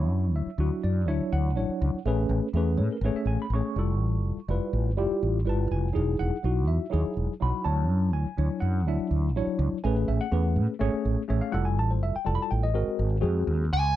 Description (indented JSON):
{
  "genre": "electric jazz fusion",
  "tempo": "123 BPM",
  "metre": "4/4",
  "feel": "straight",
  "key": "unclear",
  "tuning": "A4 = 440 Hz",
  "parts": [
    { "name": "tine electric piano", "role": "accompaniment", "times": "0.0-13.6 s", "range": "F#3 to C#6", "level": "-29 LUFS", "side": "left 1 dB", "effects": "medium stereo tremolo, phaser" },
    { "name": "mellow fretless electric bass", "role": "bass", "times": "0.0-13.9 s", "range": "E1 to A2", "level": "-25 LUFS", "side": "equal", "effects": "none" },
    { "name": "dark smooth lead guitar", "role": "melody", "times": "13.7-14.0 s", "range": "Ab5", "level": "-24 LUFS", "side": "right 2 dB", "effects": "overdrive" }
  ],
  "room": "little or no reverb",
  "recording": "dry, close 1970s-style studio recording",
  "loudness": "-24 LUFS",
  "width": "side -13 dB against mid",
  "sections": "0.0-13.7 A section",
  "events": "none",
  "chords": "0.0 Dmaj9; 2.1 Amaj9; 3.8 Fmaj9; 5.9 Emaj9; 7.6 Dmaj9; 9.8 Amaj9; 11.5 Fmaj9; 12.8 G#9"
}